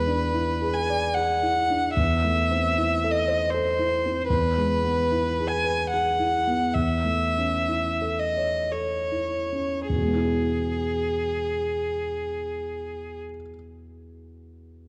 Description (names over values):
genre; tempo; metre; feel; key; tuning
classical, romantic duo for violin and grand piano; 48-78 BPM; 3/4; rubato; E major; A4 = 440 Hz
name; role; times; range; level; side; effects
clear violin; melody; 0.0-13.2 s; G#4 to G#5; -27 LUFS; equal; none
dark grand piano; accompaniment; 0.0-14.9 s; E2 to D5; -29 LUFS; equal; none
room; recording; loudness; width
moderate concert hall reverb, RT60 2.0 s; dark, warm production; -25 LUFS; mono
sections
0.0-9.9 A section; 9.9-13.1 B section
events
slowing down 3.1-9.9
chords
0.0 E7; 1.9 Am/E; 4.3 E; 6.7 A/E; 9.9 E